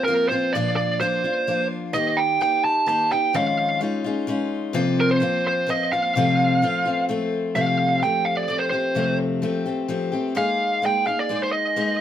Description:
rock; 128 BPM; 3/4; straight; F mixolydian; A4 = 441 Hz
biting lead guitar; melody; 0.0-12.0 s; Bb4 to A5; -21 LUFS; right 2 dB; overdrive
picked steel-string acoustic guitar; accompaniment; 0.0-12.0 s; F2 to Ab4; -23 LUFS; left 2 dB
moderate studio ambience, RT60 0.5 s; band playing live in one room; -20 LUFS; side -10 dB against mid
0.0-7.6 A section; 7.6-12.0 B section
lead electric guitar solo 7.6-12.0
0.0 Fsus4; 0.5 Bb; 1.9 Eb; 3.3 Dbadd9/F; 4.7 Fsus4; 6.1 F; 7.6 Fadd9; 10.4 Absus2

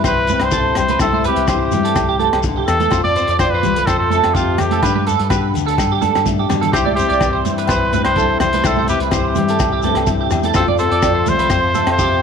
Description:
highlife guitar band; 126 BPM; 4/4; straight; C major; A4 = 440 Hz
nylon-string guitar; accompaniment; 0.0-12.2 s; E2 to G4; -22 LUFS; left 14 dB
electric guitar at the edge of break-up; arpeggios; 0.0-12.2 s; G4 to D5; -20 LUFS; right 11 dB; ensemble chorus, tape echo
fingered electric bass; bass; 0.0-12.2 s; C2 to G2; -22 LUFS; equal
crunchy breakbeat drum kit; drums; 0.0-12.1 s; hi-hat, kick drum, rim click; -22 LUFS; left 1 dB
agogo bells; percussion; 0.0-12.0 s; -28 LUFS; left 12 dB
shekere; percussion; 0.0-12.1 s; -29 LUFS; left 7 dB
clear trumpet; melody; 0.1-12.2 s; F4 to D5; -19 LUFS; left 1 dB
congas; percussion; 0.3-11.9 s; -26 LUFS; right 14 dB
percussive tonewheel organ; sustained chords; 6.7-12.2 s; E5 to A5; -30 LUFS; left 1 dB; slow rotary speaker, chorus vibrato
light reverb, small room ambience; 1960s-style stereo with parts hard left and right; -13 LUFS; side -6 dB against mid
0.0-12.2 A section
drum fill 6.1-6.7
0.0 C; 2.9 F; 4.8 G; 6.7 C; 10.6 F

